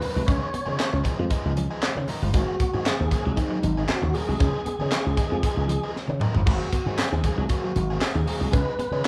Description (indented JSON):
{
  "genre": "funk",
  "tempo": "116 BPM",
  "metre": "4/4",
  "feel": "straight",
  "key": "unclear",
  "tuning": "A4 = 439 Hz",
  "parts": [
    { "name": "mellow tonewheel organ", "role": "melody", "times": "0.0-9.1 s", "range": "Eb4 to Db5", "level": "-32 LUFS", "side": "equal", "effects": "chorus vibrato, fast rotary speaker" },
    { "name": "biting overdriven guitar", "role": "accompaniment", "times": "0.0-9.1 s", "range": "F3 to Bb4", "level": "-36 LUFS", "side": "equal", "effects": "none" },
    { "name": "clean electric guitar", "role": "riff", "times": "0.0-8.9 s", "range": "Eb3 to Db4", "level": "-36 LUFS", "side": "equal", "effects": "harmonic tremolo" },
    { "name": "tight funk drum kit", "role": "drums", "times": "0.0-9.1 s", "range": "crash cymbal, handclaps, hi-hat, kick drum, snare drum, toms", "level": "-28 LUFS", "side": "equal", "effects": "none" },
    { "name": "congas", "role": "percussion", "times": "0.0-9.0 s", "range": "none", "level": "-39 LUFS", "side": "equal", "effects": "none" },
    { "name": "slap bass with an envelope filter", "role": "bass", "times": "0.2-9.0 s", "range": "G1 to Db3", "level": "-30 LUFS", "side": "equal", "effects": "none" },
    { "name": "tambourine", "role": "percussion", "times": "7.0-9.1 s", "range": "none", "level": "-48 LUFS", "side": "equal", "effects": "none" }
  ],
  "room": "moderate large studio reverb, RT60 1.2 s",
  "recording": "band playing live in one room",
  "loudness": "-25 LUFS",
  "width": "mono",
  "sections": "0.0-6.5 A section; 6.5-9.1 B section",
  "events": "drum fill 6.0-6.5",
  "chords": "0.3 Db9; 2.3 Ab9; 4.4 Db9; 6.5 Ab9; 8.5 Db9",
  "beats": "| 0.28 0.80 1.31 1.83 | 2.34 2.86 3.37 3.89 | 4.41 4.92 5.44 5.95 | 6.47 6.98 7.50 8.02 | 8.53 9.05"
}